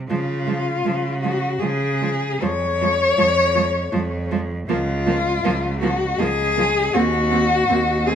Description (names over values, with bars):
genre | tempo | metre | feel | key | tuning
classical, lyrical piece for cello ensemble | 80 BPM | 3/4 | rubato | Db major, Bb minor from 4.7 s | A4 = 440 Hz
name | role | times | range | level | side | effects
warm cello | melody | 0.1-8.2 s | F4 to Db5 | -20 LUFS | left 3 dB | none
rich cello | second line | 0.1-8.1 s | Ab3 to C4 | -28 LUFS | right 10 dB | none
clear cello | accompaniment | 0.1-8.2 s | F3 to Bb3 | -27 LUFS | equal | none
clear cello | bass | 0.1-8.2 s | Db2 to Db3 | -24 LUFS | right 2 dB | none
room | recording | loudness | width
moderate recital hall reverb, RT60 1.3 s | close, detailed microphones | -18 LUFS | side -8 dB against mid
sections
0.0-8.2 A section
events
none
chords
0.1 Db; 2.4 Db/F; 4.7 Bbm/Db; 6.9 Cm7b5/Eb (rootless)